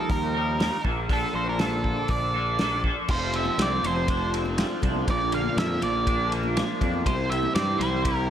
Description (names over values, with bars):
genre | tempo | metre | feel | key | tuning
psychedelic rock | 121 BPM | 4/4 | straight | unclear | A4 = 435 Hz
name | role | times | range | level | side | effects
octave-fuzz lead guitar | melody | 0.0-8.3 s | A4 to F5 | -28 LUFS | right 2 dB | distortion, slapback echo
string machine, cellos | sustained chords | 0.0-8.3 s | E4 to A5 | -33 LUFS | right 2 dB | ensemble chorus
twangy electric guitar | riff | 0.0-8.3 s | Bb2 to Bb4 | -29 LUFS | equal | rotary speaker, double-tracked left and right
fuzz picked electric bass | bass | 0.1-8.3 s | F1 to G2 | -29 LUFS | equal | overdrive
cloth-damped thuddy drum kit | drums | 0.1-8.2 s | crash cymbal, hi-hat, kick drum, ride cymbal, snare drum | -28 LUFS | equal | none
congas | percussion | 3.5-7.9 s | none | -37 LUFS | left 11 dB | none
room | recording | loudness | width
light reverb, small room ambience | none | -22 LUFS | side -10 dB against mid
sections
0.0-3.1 A section; 3.1-8.3 B section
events
none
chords
0.0 Ebadd9; 0.8 Bbmaj7; 3.1 F6; 5.1 Bb; 7.1 C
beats
0.10 0.59 | 1.09 1.59 2.09 2.59 | 3.09 3.59 4.08 4.58 | 5.08 5.58 6.07 6.57 | 7.06 7.56 8.06